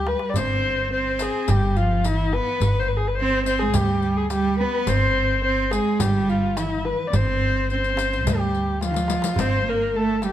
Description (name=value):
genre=Turkish makam ensemble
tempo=106 BPM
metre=4/4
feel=straight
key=G makam hicaz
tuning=A4 = 440 Hz
part: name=dark kamancheh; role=melody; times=0.0-10.3 s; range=E4-44c to D5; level=-24 LUFS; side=left 3 dB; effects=none
part: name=warm cello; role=second line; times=0.0-10.3 s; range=Eb3 to C4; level=-25 LUFS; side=right 4 dB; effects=none
part: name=upright bass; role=bass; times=0.0-10.3 s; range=G1 to D2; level=-25 LUFS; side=equal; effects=none
part: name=darbuka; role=percussion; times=0.1-10.3 s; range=none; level=-28 LUFS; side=right 2 dB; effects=none
part: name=riq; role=percussion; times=0.4-10.3 s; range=none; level=-32 LUFS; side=left 7 dB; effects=none
room=light reverb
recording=none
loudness=-19 LUFS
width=side -11 dB against mid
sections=0.0-9.4 A section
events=drum fill 0.0-0.4, 8.8-9.4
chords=none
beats=| 0.37 0.93 1.49 2.06 | 2.62 3.19 3.75 4.32 | 4.88 5.44 6.01 6.57 | 7.14 7.70 8.26 8.83 | 9.39 9.96